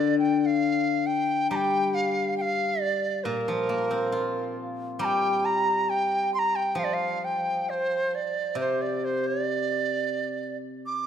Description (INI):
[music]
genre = chinese traditional, Chinese chamber ensemble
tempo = 68 BPM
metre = 4/4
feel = rubato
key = unclear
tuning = A4 = 441 Hz
[part]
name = bright large dizi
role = melody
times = 0.0-11.1 s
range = Bb4 to D6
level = -26 LUFS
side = right 2 dB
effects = none
[part]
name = steel-string zither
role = accompaniment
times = 0.0-11.1 s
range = Bb2 to F4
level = -28 LUFS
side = left 4 dB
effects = none
[sound]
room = moderate recital hall reverb, RT60 1.9 s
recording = minimal, uncompressed stereo recording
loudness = -24 LUFS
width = side -8 dB against mid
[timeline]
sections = 0.0-11.1 A section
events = none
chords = none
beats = 0.66 | 1.54 2.41 3.27 4.13 | 5.00 5.88 6.77 7.67 | 8.57 9.47 10.37